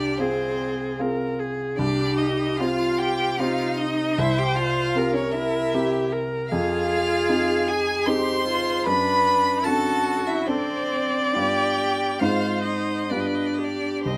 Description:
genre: classical, slow romantic movement for piano quartet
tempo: 60-78 BPM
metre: 3/4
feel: rubato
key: C minor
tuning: A4 = 440 Hz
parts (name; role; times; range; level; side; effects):
- clear violin; melody; 0.0-14.2 s; C5 to C6; -29 LUFS; equal; none
- rich cello; second line; 0.0-14.2 s; C4 to C5; -30 LUFS; equal; none
- rich viola; accompaniment; 0.0-14.2 s; D4 to Eb5; -29 LUFS; equal; none
- warm baby grand piano; accompaniment; 0.0-14.2 s; C2 to D5; -29 LUFS; equal; none
room: light reverb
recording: close, detailed microphones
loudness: -23 LUFS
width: mono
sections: 0.0-14.2 A section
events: none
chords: 0.0 Fm/C; 1.8 Cm; 4.2 C7; 6.5 Fm7; 8.9 D7/F#; 11.4 G7; 12.2 Ab; 13.1 G7

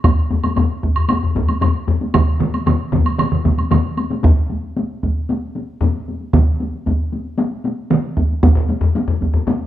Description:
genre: japanese traditional, taiko drum ensemble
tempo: 114 BPM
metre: 4/4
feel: straight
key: none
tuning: none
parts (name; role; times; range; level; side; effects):
- solo taiko drums; percussion; 0.0-9.3 s; none; -17 LUFS; right 1 dB; none
- taiko ensemble; percussion; 0.0-9.7 s; none; -21 LUFS; left 2 dB; none
- taiko ensemble; percussion; 0.0-9.6 s; none; -19 LUFS; left 3 dB; none
- woodblock; percussion; 0.0-4.1 s; none; -25 LUFS; right 5 dB; none
- solo taiko drums; percussion; 2.1-8.0 s; none; -21 LUFS; right 5 dB; none
room: moderate large studio reverb, RT60 1.2 s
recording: band playing live in one room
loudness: -15 LUFS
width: side -12 dB against mid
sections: 0.0-4.2 A section; 4.2-9.7 B section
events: none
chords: none

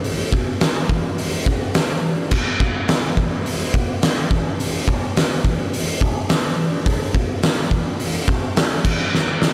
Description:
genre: rock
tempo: 106 BPM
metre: 4/4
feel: straight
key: none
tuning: none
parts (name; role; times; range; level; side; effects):
- oversized low-tuned drum kit; drums; 0.0-9.5 s; crash cymbal, hi-hat, kick drum, snare drum; -20 LUFS; equal; none
room: light reverb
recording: none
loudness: -20 LUFS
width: mono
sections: 0.0-9.5 A section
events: drum fill 9.1-9.5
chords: none

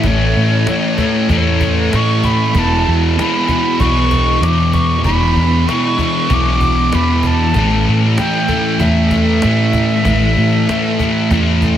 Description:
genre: rock, shoegaze and dream pop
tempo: 96 BPM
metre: 4/4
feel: straight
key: unclear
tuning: A4 = 442 Hz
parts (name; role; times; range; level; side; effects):
- concert flute; melody; 0.0-11.8 s; C#5 to D6; -19 LUFS; right 1 dB; diffuse ambient delay
- fuzz guitar; riff; 0.0-11.8 s; E2 to A3; -15 LUFS; equal; distortion, analog chorus
- vintage muted fingered electric bass; bass; 0.0-11.8 s; E1 to A2; -16 LUFS; equal; none
- cajon; drums; 0.0-11.8 s; none; -23 LUFS; equal; none
room: wet lush hall reverb, RT60 1.7 s, small room ambience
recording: dreamy mix soaked in reverb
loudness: -12 LUFS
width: side -10 dB against mid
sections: 0.0-11.8 A section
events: none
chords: 0.0 A; 2.6 E5; 7.6 A5

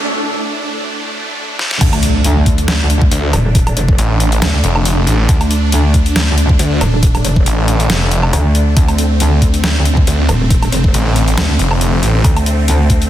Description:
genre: heavy wobble dubstep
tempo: 138 BPM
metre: 4/4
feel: swing 55% on 16ths, half-time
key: D phrygian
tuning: A4 = 438 Hz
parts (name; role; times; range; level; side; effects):
- supersaw chords; sustained chords; 0.0-13.1 s; D2 to D4; -20 LUFS; right 1 dB; phaser, sidechain pumping
- riser and impact; sound effects; 0.0-3.5 s; none; -23 LUFS; equal; none
- dubstep drum kit; drums; 1.6-13.1 s; crash cymbal, hi-hat, snare drum, woodblock; -19 LUFS; equal; overdrive
- metallic wobble bass; bass; 1.8-13.1 s; Eb1 to D2; -13 LUFS; equal; distortion, chorus, overdrive
- electronic kick drum; drums; 1.8-13.0 s; none; -12 LUFS; equal; overdrive
- snarling distorted saw bass; bass; 3.1-12.2 s; F1 to D2; -14 LUFS; equal; distortion, overdrive
room: little or no reverb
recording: dense, heavily limited modern master, high-pass filter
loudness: -11 LUFS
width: side -12 dB against mid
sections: 0.0-1.8 A section; 1.8-13.1 B section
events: build-up 0.0-1.8; filter sweep 0.0-1.8; break 0.1-1.8; drum fill 1.6; drop 1.8-13.1; impact 1.8-3.5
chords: 0.0 D5

